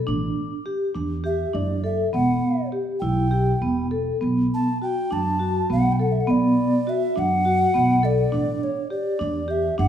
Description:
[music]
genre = contemporary instrumental, chamber music in an uneven meter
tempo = 204 BPM (eighths)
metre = 7/8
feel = straight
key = unclear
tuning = A4 = 441 Hz
[part]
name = vibraphone with soft mallets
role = arpeggios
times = 0.1-9.9 s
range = B3 to A4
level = -23 LUFS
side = equal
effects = none
[part]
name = upright bass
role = bass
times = 0.1-9.9 s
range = E1 to F#2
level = -25 LUFS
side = right 1 dB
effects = none
[part]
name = breathy alto ocarina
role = melody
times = 1.3-9.9 s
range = C#5 to A5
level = -25 LUFS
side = equal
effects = none
[sound]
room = moderate scoring stage reverb, RT60 1.7 s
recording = small room ambience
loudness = -20 LUFS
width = side -9 dB against mid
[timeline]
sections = 0.0-9.9 A section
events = none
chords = 0.1 A7sus4; 2.1 Em; 4.2 Bm7; 8.3 A7sus4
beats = | 0.08 0.38 0.67 0.96 1.26 1.55 1.84 | 2.14 2.43 2.73 3.02 3.32 3.62 3.92 | 4.22 4.52 4.82 5.12 5.41 5.71 6.00 | 6.29 6.59 6.88 7.17 7.47 7.76 8.05 | 8.34 8.63 8.92 9.21 9.50 9.79

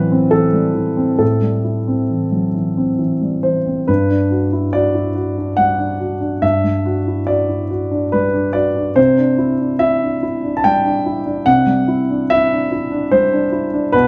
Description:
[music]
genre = neoclassical minimalist piano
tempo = 66-74 BPM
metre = 3/4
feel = rubato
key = G major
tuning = A4 = 440 Hz
[part]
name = warm grand piano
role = solo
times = 0.0-14.1 s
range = G2 to A5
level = -16 LUFS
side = equal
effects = none
[sound]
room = moderate large studio reverb, RT60 1.1 s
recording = band playing live in one room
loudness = -17 LUFS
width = mono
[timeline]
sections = 0.0-3.9 A section; 3.9-14.1 B section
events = none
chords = 0.0 Am7; 3.9 Gmaj7; 9.0 Cadd9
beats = 0.32 | 1.21 2.11 3.00 | 3.88 4.74 5.58 | 6.42 7.28 8.13 | 8.97 9.81 10.64 | 11.47 12.30 13.12 | 13.93

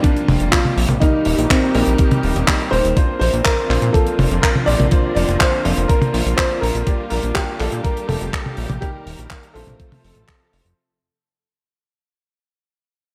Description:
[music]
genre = italo disco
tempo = 123 BPM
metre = 4/4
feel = straight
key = unclear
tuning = A4 = 440 Hz
[part]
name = dark baby grand piano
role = melody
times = 0.0-10.5 s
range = C4 to D5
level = -24 LUFS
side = equal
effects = delay
[part]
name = rich studio string section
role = sustained chords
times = 0.0-10.8 s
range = Bb2 to Bb4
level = -29 LUFS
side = equal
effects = none
[part]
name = clear baby grand piano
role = stabs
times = 0.0-10.7 s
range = G3 to D5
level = -29 LUFS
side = equal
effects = none
[part]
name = damped 70s drum kit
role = drums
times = 0.0-10.8 s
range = handclaps, hi-hat, toms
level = -23 LUFS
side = equal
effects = studio reverb, gated reverb
[part]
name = electronic kick drum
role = drums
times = 0.0-10.4 s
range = none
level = -20 LUFS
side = equal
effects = studio reverb
[part]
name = fat analog bass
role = bass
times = 0.3-10.7 s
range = Eb1 to Bb2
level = -22 LUFS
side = equal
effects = none
[sound]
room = moderate lush hall reverb, RT60 1.7 s, small room ambience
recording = bright 1980s-style digital production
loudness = -17 LUFS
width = mono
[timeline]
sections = 0.0-10.8 A section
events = fade-out 5.6-10.8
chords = 0.0 Gm7; 1.0 Eb; 3.0 Bbadd9; 6.9 Gm7/Bb; 8.8 Eb; 9.8 F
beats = 0.04 0.53 | 1.02 1.50 1.99 2.48 | 2.97 3.46 3.94 4.43 | 4.92 5.41 5.89 6.38 | 6.87 7.36 7.85 8.33 | 8.82 9.31 9.80 10.29

